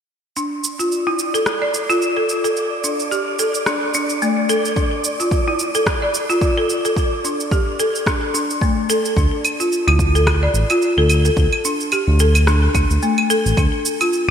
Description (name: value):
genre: organic downtempo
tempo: 109 BPM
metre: 4/4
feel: swing 57% on 16ths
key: D minor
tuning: A4 = 440 Hz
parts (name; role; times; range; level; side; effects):
- folk marimba with medium hard mallets; arpeggios; 0.4-14.3 s; A3 to D5; -18 LUFS; left 1 dB; low-pass filter, ping-pong delay, shimmer reverb
- electronic shaker, rim click and claves; drums; 0.4-14.3 s; none; -23 LUFS; right 2 dB; studio reverb, gated reverb
- wind-like tuned noise texture; texture; 0.9-9.2 s; D5; -27 LUFS; right 1 dB; built-in reverb, shimmer reverb
- electronic kick drum; drums; 4.8-13.7 s; none; -20 LUFS; equal; overdrive, studio reverb
- smooth synth bass; bass; 9.2-14.3 s; A1 to D2; -15 LUFS; equal; sidechain pumping
room: wet lush hall reverb, RT60 2.8 s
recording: bright 1980s-style digital production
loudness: -15 LUFS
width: side -8 dB against mid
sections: 0.4-9.2 A section; 9.2-14.3 B section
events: filter sweep on marimba 0.4-9.2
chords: 0.4 D5; 9.2 Dm